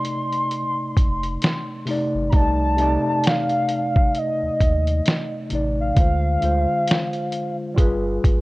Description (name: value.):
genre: lo-fi hip hop.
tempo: 66 BPM.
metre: 4/4.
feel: swing 58% on 16ths.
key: C dorian.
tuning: A4 = 439 Hz.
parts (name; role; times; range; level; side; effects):
warbly nostalgic lead; melody; 0.0-7.6 s; Eb5 to C6; -24 LUFS; equal; chorus.
tine electric piano; accompaniment; 0.0-8.4 s; C3 to Eb5; -24 LUFS; equal; overdrive, medium stereo tremolo, cassette tape.
lo-fi sampler-style drum kit; drums; 0.0-8.4 s; hi-hat, kick drum, snare drum; -19 LUFS; equal; none.
warm sub bass; bass; 1.0-8.4 s; F1 to Eb2; -23 LUFS; equal; tube saturation.
room: digital ambience.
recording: worn, warbling old tape, cassette tape, warbly pitch drift.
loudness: -18 LUFS.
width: side -21 dB against mid.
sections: 0.0-2.3 A section; 2.3-8.4 B section.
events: none.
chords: 0.0 Cm69; 6.0 Dm7b5; 7.8 G7b9.